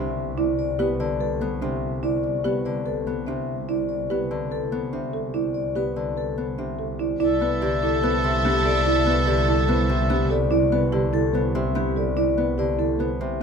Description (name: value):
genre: classical, minimalist pattern music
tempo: 145 BPM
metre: 4/4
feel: straight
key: C major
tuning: A4 = 440 Hz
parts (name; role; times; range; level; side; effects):
- vibraphone with medium mallets; melody; 0.0-13.4 s; G4 to E5; -27 LUFS; left 9 dB; none
- Celtic harp; accompaniment; 0.0-13.4 s; C3 to B3; -29 LUFS; left 4 dB; none
- folk marimba with medium mallets; arpeggios; 0.0-13.4 s; D4 to B4; -27 LUFS; right 9 dB; none
- rich studio double bass section; bass; 0.0-13.4 s; C2; -27 LUFS; right 2 dB; none
- clear oboe; second line; 7.2-10.3 s; A4; -26 LUFS; right 2 dB; none
- rich studio violin section; sustained chords; 7.2-10.3 s; A4 to E5; -30 LUFS; right 1 dB; none
room: light reverb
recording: none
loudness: -21 LUFS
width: side -6 dB against mid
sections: 0.0-7.2 A section; 7.2-13.4 B section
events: none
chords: 0.0 Cmaj13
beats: 0.17 | 0.58 1.00 1.41 1.82 | 2.24 2.65 3.07 3.48 | 3.89 4.31 4.72 5.13 | 5.55 5.96 6.38 6.79 | 7.20 7.62 8.03 8.45 | 8.86 9.27 9.69 10.10 | 10.52 10.93 11.34 11.76 | 12.17 12.58 13.00 13.41